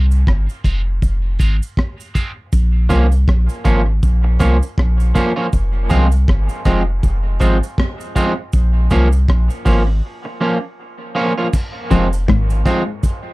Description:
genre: dub reggae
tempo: 80 BPM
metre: 4/4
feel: swing 58% on 16ths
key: F minor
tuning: A4 = 441 Hz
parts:
  - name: electric guitar at the edge of break-up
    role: accompaniment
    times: 0.0-12.8 s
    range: F3 to F4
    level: -20 LUFS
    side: right 1 dB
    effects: high-pass filter, dub echo
  - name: soft dub sub bass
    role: bass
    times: 0.0-12.6 s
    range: F1 to C2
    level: -14 LUFS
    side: equal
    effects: transformer saturation
  - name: cabasa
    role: percussion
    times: 0.1-13.2 s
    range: none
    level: -41 LUFS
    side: right 7 dB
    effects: high-pass filter on perc, dub echo
  - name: crunchy breakbeat drum kit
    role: drums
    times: 0.3-13.2 s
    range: crash cymbal, hi-hat, kick drum, rim click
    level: -18 LUFS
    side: equal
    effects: none
  - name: electric guitar at the edge of break-up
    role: riff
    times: 11.9-12.5 s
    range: F2 to Ab2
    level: -20 LUFS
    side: left 5 dB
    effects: spring reverb, dub echo
room: little or no reverb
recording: dry, close 1970s-style studio recording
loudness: -14 LUFS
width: side -21 dB against mid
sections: 0.0-11.5 A section; 11.5-13.3 B section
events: break 10.0-11.5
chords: 0.0 Fm; 2.5 Bbm; 5.5 Fm; 8.5 Bbm; 11.5 Fm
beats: 0.27 1.02 1.77 | 2.52 3.28 4.03 4.78 | 5.53 6.28 7.03 7.78 | 8.53 9.29 10.04 10.79 | 11.54 12.29 13.04

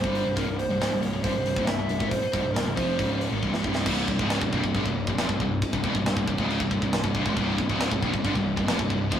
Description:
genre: heavy metal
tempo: 137 BPM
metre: 4/4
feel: straight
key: unclear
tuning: A4 = 440 Hz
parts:
  - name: dark smooth lead guitar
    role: melody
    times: 0.0-3.2 s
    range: Bb4 to E5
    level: -29 LUFS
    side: right 2 dB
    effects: overdrive
  - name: heavy high-gain guitar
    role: riff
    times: 0.0-9.2 s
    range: C2 to G3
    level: -32 LUFS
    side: left 4 dB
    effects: distortion
  - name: sludgy distorted guitar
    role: riff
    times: 0.0-9.2 s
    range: C2 to G3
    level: -30 LUFS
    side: right 3 dB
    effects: overdrive
  - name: fuzz picked electric bass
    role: bass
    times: 0.0-9.2 s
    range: C1 to Ab1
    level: -30 LUFS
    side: equal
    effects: overdrive
  - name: tight metal drum kit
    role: drums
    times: 0.0-9.2 s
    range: crash cymbal, hi-hat, kick drum, snare drum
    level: -29 LUFS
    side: equal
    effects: none
  - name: heavy high-gain guitar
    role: riff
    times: 3.9-9.2 s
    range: C2 to F3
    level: -32 LUFS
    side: left 1 dB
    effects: distortion
room: moderate small room reverb, RT60 0.5 s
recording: rough rehearsal-room recording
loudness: -23 LUFS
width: side -9 dB against mid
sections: 0.0-3.9 A section; 3.9-9.2 B section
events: drum fill 3.4-3.9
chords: 0.0 C5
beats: | 0.36 0.80 1.24 1.68 | 2.12 2.56 2.99 3.43 | 3.87 4.31 4.75 5.18 | 5.62 6.06 6.50 6.93 | 7.37 7.81 8.25 8.69 | 9.12

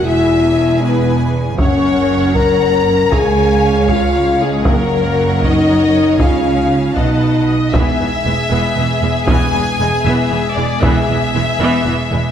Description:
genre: cinematic, epic orchestral film score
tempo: 78 BPM (dotted quarters)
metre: 6/8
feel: straight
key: E major from 7.7 s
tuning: A4 = 441 Hz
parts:
  - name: clear symphonic violin section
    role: second line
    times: 0.0-12.3 s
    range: Ab4 to Bb5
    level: -21 LUFS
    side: left 4 dB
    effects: none
  - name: rich symphonic viola section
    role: accompaniment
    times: 0.0-12.2 s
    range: E3 to Gb5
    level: -23 LUFS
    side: right 1 dB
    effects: none
  - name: dark French horn section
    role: sustained chords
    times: 0.0-12.2 s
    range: Ab3 to Bb4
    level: -16 LUFS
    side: left 2 dB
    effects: none
  - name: rich symphonic double bass section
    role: bass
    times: 0.0-12.2 s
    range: E1 to Db2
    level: -20 LUFS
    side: right 4 dB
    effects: none
  - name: clear symphonic violin section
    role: melody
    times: 0.1-12.3 s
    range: D5 to A5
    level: -22 LUFS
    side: left 3 dB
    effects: none
  - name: rich symphonic cello section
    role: bass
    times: 0.1-12.2 s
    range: Db2 to Db3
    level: -21 LUFS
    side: right 3 dB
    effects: none
  - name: solo taiko drums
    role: drums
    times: 1.6-11.3 s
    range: none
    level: -19 LUFS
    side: equal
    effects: none
room: wet concert hall reverb, RT60 2.4 s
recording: none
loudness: -12 LUFS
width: side -9 dB against mid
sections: 0.0-7.7 A section; 7.7-12.3 B section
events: none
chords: 0.0 E; 1.6 Gb; 3.1 Db; 4.7 Gb; 6.2 Db; 7.0 Cb7; 7.7 E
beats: | 0.05 0.82 | 1.58 2.35 | 3.12 3.89 | 4.66 5.43 | 6.20 6.97 | 7.74 8.51 | 9.29 10.06 | 10.83 11.60

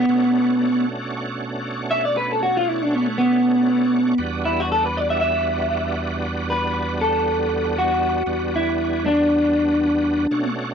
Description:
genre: blues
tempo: 117 BPM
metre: 4/4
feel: swing 56% on 16ths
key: unclear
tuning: A4 = 439 Hz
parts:
  - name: electric guitar through a small old amp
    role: melody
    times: 0.0-10.5 s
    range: A3 to E5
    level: -18 LUFS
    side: equal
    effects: none
  - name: bright tonewheel organ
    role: accompaniment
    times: 0.0-10.7 s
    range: E2 to F#4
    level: -25 LUFS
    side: right 2 dB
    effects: slow rotary speaker, overdrive, chorus vibrato
room: little or no reverb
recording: dry, close 1970s-style studio recording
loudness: -18 LUFS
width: side -7 dB against mid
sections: 0.0-10.7 A section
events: clean electric guitar solo 0.0-10.7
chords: 0.0 Bm9; 4.2 Em9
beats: | 0.10 0.61 1.12 1.63 | 2.14 2.65 3.17 3.68 | 4.19 4.70 5.21 5.72 | 6.23 6.74 7.25 7.76 | 8.28 8.79 9.30 9.81 | 10.32

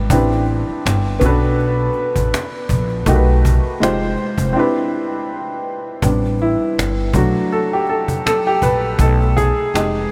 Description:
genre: R&B, neo-soul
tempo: 81 BPM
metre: 4/4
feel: swing 56% on 16ths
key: unclear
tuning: A4 = 439 Hz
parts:
  - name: warm upright piano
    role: accompaniment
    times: 0.0-10.1 s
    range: F#3 to C5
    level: -20 LUFS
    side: equal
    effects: none
  - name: upright bass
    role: bass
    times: 0.0-10.1 s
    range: F1 to B1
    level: -20 LUFS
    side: equal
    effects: none
  - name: cajon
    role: drums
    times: 0.1-10.1 s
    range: none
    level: -25 LUFS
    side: equal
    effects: none
room: moderate huge ambient reverb, RT60 7.1 s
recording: dreamy mix soaked in reverb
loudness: -17 LUFS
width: mono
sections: 0.0-6.0 A section; 6.0-10.1 B section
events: break 4.5-6.0; upright piano solo 6.0-10.1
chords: 0.1 Am11; 1.2 Bm7; 3.1 B7b13; 3.8 Fm9; 4.5 Cmaj9; 6.0 Am11; 7.1 Bm7; 9.0 B7b13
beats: | 0.10 0.84 1.58 2.32 | 3.06 3.80 4.54 5.29 | 6.03 6.77 7.51 8.25 | 8.99 9.73

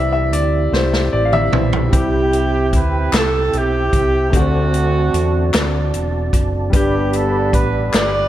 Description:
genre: slow gospel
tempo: 50 BPM (dotted quarters)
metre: 6/8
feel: straight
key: C major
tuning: A4 = 439 Hz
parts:
  - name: warm grand piano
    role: accompaniment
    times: 0.0-8.3 s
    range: G2 to F5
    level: -22 LUFS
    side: left 3 dB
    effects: none
  - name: percussive tonewheel organ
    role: sustained chords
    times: 0.0-8.3 s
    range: C4 to B5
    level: -23 LUFS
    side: right 3 dB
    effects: slow rotary speaker, chorus vibrato
  - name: fingered electric bass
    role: bass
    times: 0.0-8.3 s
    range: E1 to E2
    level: -19 LUFS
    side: equal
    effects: none
  - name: swinging big-band drum kit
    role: drums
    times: 0.3-8.1 s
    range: hi-hat, kick drum, snare drum, toms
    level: -19 LUFS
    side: equal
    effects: none
  - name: warm horn section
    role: melody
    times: 1.9-8.3 s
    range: A3 to D5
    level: -19 LUFS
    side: right 2 dB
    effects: none
  - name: group handclap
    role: percussion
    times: 3.1-8.3 s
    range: none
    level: -27 LUFS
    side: left 3 dB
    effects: none
room: light reverb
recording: none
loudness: -14 LUFS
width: side -12 dB against mid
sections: 0.0-1.9 A section; 1.9-8.3 B section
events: grand piano solo 0.0-1.9; drum fill 0.7-1.9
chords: 0.0 C; 4.3 D7; 6.7 G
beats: 0.73 | 1.93 3.13 | 4.33 5.53 | 6.73 7.93

